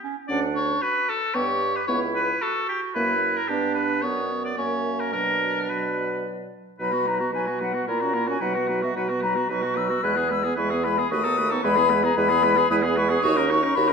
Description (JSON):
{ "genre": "quick classical-period movement for wind quintet", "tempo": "112 BPM", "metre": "3/4", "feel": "straight", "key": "B minor, B major from 6.8 s", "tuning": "A4 = 442 Hz", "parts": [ { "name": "bright clarinet", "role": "accompaniment", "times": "0.0-13.9 s", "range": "B3 to G#4", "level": "-29 LUFS", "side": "right 7 dB", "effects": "none" }, { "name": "silver concert flute", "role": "melody", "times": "0.3-13.9 s", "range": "D5 to F#6", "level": "-26 LUFS", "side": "left 8 dB", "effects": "none" }, { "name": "clear oboe", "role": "second line", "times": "0.3-13.9 s", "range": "F#4 to D5", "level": "-26 LUFS", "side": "left 2 dB", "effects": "none" }, { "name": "dark French horn", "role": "accompaniment", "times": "0.3-13.9 s", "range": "F#3 to D#4", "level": "-30 LUFS", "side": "equal", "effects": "none" }, { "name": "dark bassoon", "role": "bass", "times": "0.3-13.9 s", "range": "C#2 to B2", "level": "-27 LUFS", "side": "right 2 dB", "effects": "none" } ], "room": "wet recital hall reverb, RT60 1.5 s", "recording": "minimal, uncompressed stereo recording", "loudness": "-21 LUFS", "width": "side -5 dB against mid", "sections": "0.0-6.8 A section; 6.8-13.9 A section", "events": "none", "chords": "0.3 Dmaj7; 1.4 G; 1.9 A69/C#; 3.0 F#7; 3.5 G; 4.0 Bm/F#; 4.6 F#7; 5.1 Bm; 6.8 B; 7.9 F#7/A#; 8.4 B; 10.0 E; 11.1 B7/D#; 11.6 E; 13.2 D#m7" }